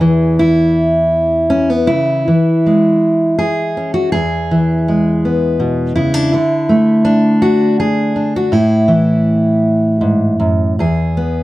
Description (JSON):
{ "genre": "folk, solo fingerstyle acoustic guitar", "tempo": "81 BPM", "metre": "3/4", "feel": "rubato", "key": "E mixolydian", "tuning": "A4 = 440 Hz", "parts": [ { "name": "fingerpicked steel-string acoustic guitar", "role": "solo", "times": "0.0-11.4 s", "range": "E2 to G#4", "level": "-11 LUFS", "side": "equal", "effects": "none" } ], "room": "moderate studio reverb, RT60 0.7 s", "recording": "none", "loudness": "-11 LUFS", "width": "side -17 dB against mid", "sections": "0.0-10.8 A section", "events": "none", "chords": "0.0 N.C.; 1.9 C#m; 4.1 E; 6.3 D5; 8.5 A5; 10.8 E" }